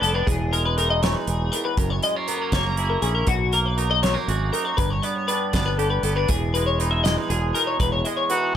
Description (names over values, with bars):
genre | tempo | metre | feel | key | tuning
math rock and midwest emo | 80 BPM (dotted quarters) | 6/8 | straight | E lydian | A4 = 437 Hz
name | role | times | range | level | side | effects
twangy electric guitar | accompaniment | 0.0-8.6 s | E2 to G#4 | -27 LUFS | right 5 dB | spring reverb
twelve-string electric guitar | arpeggios | 0.0-8.6 s | F#4 to E5 | -24 LUFS | left 5 dB | lush chorus
growling fingered electric bass | bass | 0.0-8.0 s | E1 to B1 | -24 LUFS | equal | overdrive
loose indie drum kit | drums | 0.0-8.4 s | hi-hat, kick drum, snare drum | -27 LUFS | right 1 dB | none
clear trumpet | melody | 8.3-8.5 s | F#4 | -21 LUFS | right 1 dB | none
room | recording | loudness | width
moderate small room reverb, RT60 0.5 s | none | -20 LUFS | side -10 dB against mid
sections
0.0-8.6 A section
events
none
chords
0.3 Emaj7; 1.8 F#7; 3.3 Bmaj7; 4.8 G; 6.3 Emaj7